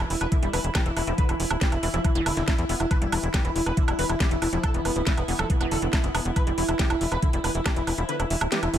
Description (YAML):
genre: psychedelic trance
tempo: 139 BPM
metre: 4/4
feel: straight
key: E phrygian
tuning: A4 = 442 Hz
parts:
  - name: wide unison lead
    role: melody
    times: 0.0-8.8 s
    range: B3 to B4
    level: -30 LUFS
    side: equal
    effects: phaser, cassette tape, sidechain pumping, dub echo
  - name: overtone-sweeping drone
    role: sustained chords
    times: 0.0-8.8 s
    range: E4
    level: -32 LUFS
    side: equal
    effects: chorus, built-in reverb, sidechain pumping
  - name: wide unison pluck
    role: riff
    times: 0.0-8.8 s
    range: D3 to B3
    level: -34 LUFS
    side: moving between left 4 dB and right 6 dB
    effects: auto-pan, sidechain pumping, dub echo
  - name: tight sequencer bass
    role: bass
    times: 0.0-8.8 s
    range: D1 to E2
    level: -28 LUFS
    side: equal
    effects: none
  - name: garage drum kit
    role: drums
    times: 0.1-8.8 s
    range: hi-hat, snare drum, woodblock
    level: -30 LUFS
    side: right 2 dB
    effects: none
  - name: electronic kick drum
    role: drums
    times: 0.3-7.7 s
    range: none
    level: -24 LUFS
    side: equal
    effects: none
room: little or no reverb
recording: none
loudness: -22 LUFS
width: side -10 dB against mid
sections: 0.0-8.8 A section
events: kick drops out 8.1-8.8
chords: 0.0 E5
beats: 0.32 0.75 | 1.18 1.61 2.04 2.48 | 2.91 3.34 3.77 4.20 | 4.63 5.07 5.50 5.93 | 6.36 6.79 7.22 7.66 | 8.09 8.52